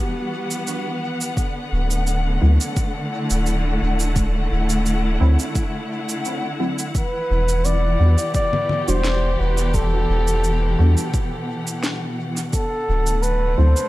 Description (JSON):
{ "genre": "ambient dub", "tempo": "86 BPM", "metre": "4/4", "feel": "swing 54% on 16ths", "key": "E minor", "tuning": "A4 = 440 Hz", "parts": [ { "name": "dark symphonic string section", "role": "sustained chords", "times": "0.0-13.9 s", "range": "B2 to F#5", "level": "-25 LUFS", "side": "left 1 dB", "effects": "none" }, { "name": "electronic cabasa, congas and snare drum", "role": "drums", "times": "0.5-13.9 s", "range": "none", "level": "-28 LUFS", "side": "right 1 dB", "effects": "small room ambience, dub echo" }, { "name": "electronic kick drum", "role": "drums", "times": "1.4-12.7 s", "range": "none", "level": "-22 LUFS", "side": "equal", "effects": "small room ambience" }, { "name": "soft dub sub bass", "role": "bass", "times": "1.7-13.7 s", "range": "D1 to E2", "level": "-18 LUFS", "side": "equal", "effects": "none" }, { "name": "filtered dub chord stab", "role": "stabs", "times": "2.4-13.7 s", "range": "F#3 to F#4", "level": "-29 LUFS", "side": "right 1 dB", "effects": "chorus, dub echo" }, { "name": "trumpet with bucket mute", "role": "melody", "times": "7.0-13.9 s", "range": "A4 to D5", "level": "-24 LUFS", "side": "equal", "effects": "dub echo" } ], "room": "light reverb", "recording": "none", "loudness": "-18 LUFS", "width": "side -17 dB against mid", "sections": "0.0-13.9 A section", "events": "none", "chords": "0.0 Emadd9; 1.4 Dadd9; 7.0 Em9; 12.5 D7", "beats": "0.67 | 1.37 2.07 2.77 3.46 | 4.16 4.86 5.56 6.25 | 6.95 7.65 8.35 9.04 | 9.74 10.44 11.14 11.84 | 12.53 13.23" }